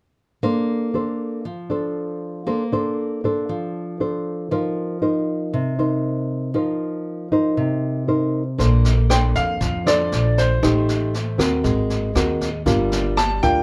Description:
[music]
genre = bossa nova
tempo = 118 BPM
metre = 4/4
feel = straight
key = Bb major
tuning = A4 = 440 Hz
[part]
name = nylon-string guitar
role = accompaniment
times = 0.4-13.6 s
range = C3 to C5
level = -24 LUFS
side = equal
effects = none
[part]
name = upright bass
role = bass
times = 8.6-13.6 s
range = G1 to F2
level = -23 LUFS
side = equal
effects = none
[part]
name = jazz brush drum kit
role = drums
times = 8.6-13.5 s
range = kick drum, rim click, snare drum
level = -29 LUFS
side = equal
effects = none
[part]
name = clear baby grand piano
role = melody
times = 9.1-13.6 s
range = C5 to A5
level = -24 LUFS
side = equal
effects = none
[sound]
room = moderate small room reverb, RT60 0.6 s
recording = band playing live in one room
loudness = -21 LUFS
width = mono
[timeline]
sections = 0.4-8.6 A section; 8.6-13.6 B section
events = none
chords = 0.4 Bbmaj9; 4.5 F7sus4; 8.6 Bbmaj9; 10.6 Am7b5; 11.6 Ab9; 12.7 Gm7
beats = | 0.44 0.95 1.46 1.97 | 2.48 2.99 3.50 4.01 | 4.52 5.03 5.54 6.05 | 6.56 7.07 7.57 8.08 | 8.59 9.10 9.61 10.12 | 10.63 11.14 11.64 12.15 | 12.66 13.17

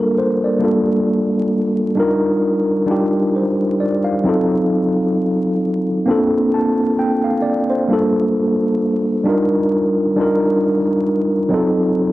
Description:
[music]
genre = hip hop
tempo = 66 BPM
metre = 4/4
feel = swing 57% on 16ths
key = unclear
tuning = A4 = 439 Hz
[part]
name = mellow tine electric piano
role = solo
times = 0.0-12.1 s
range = Gb3 to A5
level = -15 LUFS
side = equal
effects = medium stereo tremolo, cassette tape
[sound]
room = moderate booth ambience, RT60 0.2 s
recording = home recording on cassette, vinyl crackle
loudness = -15 LUFS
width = side -16 dB against mid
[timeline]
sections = 0.6-12.1 A section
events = none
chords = 0.0 Gm9; 2.0 Ebmaj9; 4.2 F7b9; 6.1 Bbmaj9; 7.9 Gm9; 9.2 Ebmaj9; 11.5 F7b9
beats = | 0.61 1.52 2.43 3.34 | 4.25 5.16 6.07 6.97 | 7.88 8.79 9.70 10.61 | 11.52

